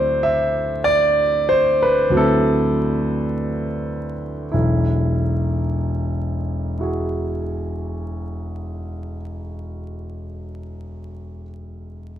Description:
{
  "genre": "classical, impressionist solo piano",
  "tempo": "24-35 BPM (dotted quarters)",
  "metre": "9/8",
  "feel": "rubato",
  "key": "E major",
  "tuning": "A4 = 441 Hz",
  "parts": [
    { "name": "clear concert grand piano", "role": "solo", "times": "0.0-12.2 s", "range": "E1 to E5", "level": "-19 LUFS", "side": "equal", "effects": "none" }
  ],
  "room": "moderate recital hall reverb, RT60 1.6 s",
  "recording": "close, detailed microphones, vinyl crackle",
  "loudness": "-18 LUFS",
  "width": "side -10 dB against mid",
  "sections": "0.0-4.5 A section; 4.5-11.3 B section",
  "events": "slowing down 0.0-4.5",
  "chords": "0.0 D9; 4.5 Eadd9"
}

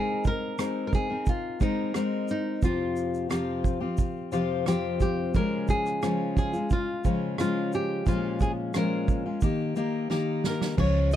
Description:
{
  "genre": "acoustic pop",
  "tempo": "88 BPM",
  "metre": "4/4",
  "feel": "straight",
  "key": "Ab major",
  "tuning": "A4 = 440 Hz",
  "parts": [
    { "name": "nylon-string guitar", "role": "melody", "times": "0.0-11.2 s", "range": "Eb4 to Db5", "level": "-31 LUFS", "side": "equal", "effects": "none" },
    { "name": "fingerpicked steel-string acoustic guitar", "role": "accompaniment", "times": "0.0-11.2 s", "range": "F2 to Bb4", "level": "-28 LUFS", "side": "left 2 dB", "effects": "none" },
    { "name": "natural country drum kit", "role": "drums", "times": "0.2-11.2 s", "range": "crash cymbal, kick drum, rim click, shaker, snare drum", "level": "-28 LUFS", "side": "right 2 dB", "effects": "none" },
    { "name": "vintage muted fingered electric bass", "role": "bass", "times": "10.8-11.2 s", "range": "Db2", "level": "-23 LUFS", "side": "right 1 dB", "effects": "none" }
  ],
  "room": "little or no reverb",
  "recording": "dark, warm production",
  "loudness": "-25 LUFS",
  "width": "side -11 dB against mid",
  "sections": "0.0-10.8 A section",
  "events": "drum fill 10.1-10.8",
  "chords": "0.0 Abadd9; 2.6 Fsus2; 5.3 Db; 8.1 Bbm7; 9.4 Eb"
}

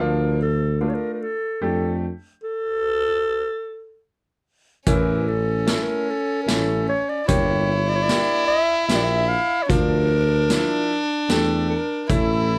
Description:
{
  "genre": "klezmer",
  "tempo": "74 BPM",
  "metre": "3/4",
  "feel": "straight",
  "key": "unclear",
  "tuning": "A4 = 445 Hz",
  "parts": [
    { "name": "growling clarinet", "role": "melody", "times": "0.0-12.6 s", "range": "A4 to F5", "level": "-26 LUFS", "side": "equal", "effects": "none" },
    { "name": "bright upright piano", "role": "accompaniment", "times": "0.0-12.5 s", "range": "E3 to G4", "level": "-29 LUFS", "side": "equal", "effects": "none" },
    { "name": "mellow tuba", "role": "bass", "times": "0.0-12.6 s", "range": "G1 to F2", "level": "-26 LUFS", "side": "equal", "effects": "none" },
    { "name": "warm violin", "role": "second line", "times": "4.9-12.6 s", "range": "C#4 to E4", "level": "-27 LUFS", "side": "equal", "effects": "none" },
    { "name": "street-band drum kit", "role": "drums", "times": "4.9-12.3 s", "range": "hi-hat, kick drum, snare drum", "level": "-25 LUFS", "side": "equal", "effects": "none" }
  ],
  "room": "little or no reverb",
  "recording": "close, detailed microphones",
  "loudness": "-21 LUFS",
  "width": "mono",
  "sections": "0.0-4.9 A section; 4.9-12.6 A section",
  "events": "stop 2.4-4.9",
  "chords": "0.0 Dm; 2.4 N.C.; 4.9 A; 7.3 Gm; 9.7 Dm"
}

